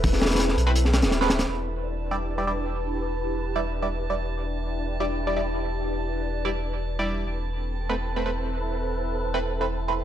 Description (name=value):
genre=drum and bass, jungle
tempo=166 BPM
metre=4/4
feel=straight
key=E minor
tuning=A4 = 440 Hz
part: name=soft string machine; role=sustained chords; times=0.0-10.0 s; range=C4 to B4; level=-30 LUFS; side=equal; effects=phaser, ensemble chorus, vintage 12-bit sampler grit
part: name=saturated sub bass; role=bass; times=0.0-10.0 s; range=D1 to B1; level=-28 LUFS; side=equal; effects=none
part: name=crunchy breakbeat drum kit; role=drums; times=0.0-1.5 s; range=hi-hat, kick drum, snare drum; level=-23 LUFS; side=equal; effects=none
part: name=band-passed chord stab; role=stabs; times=0.7-9.9 s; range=G3 to D5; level=-30 LUFS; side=right 2 dB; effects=phaser, dub echo
part: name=drifting glass-harmonics texture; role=texture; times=1.7-10.0 s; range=A5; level=-39 LUFS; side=right 6 dB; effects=chorus, built-in reverb
room=light reverb, studio reverb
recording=dry, gritty hardware recording, transformer saturation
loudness=-24 LUFS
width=side -10 dB against mid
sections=0.0-1.5 A section; 1.5-10.0 B section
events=drop 0.0-1.5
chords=0.0 Amadd9; 1.5 Em7; 7.3 Amadd9/E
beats=| 0.03 0.39 0.75 1.11 | 1.48 1.84 2.20 2.56 | 2.92 3.28 3.65 4.01 | 4.37 4.73 5.09 5.45 | 5.81 6.17 6.54 6.90 | 7.26 7.62 7.98 8.34 | 8.71 9.07 9.43 9.79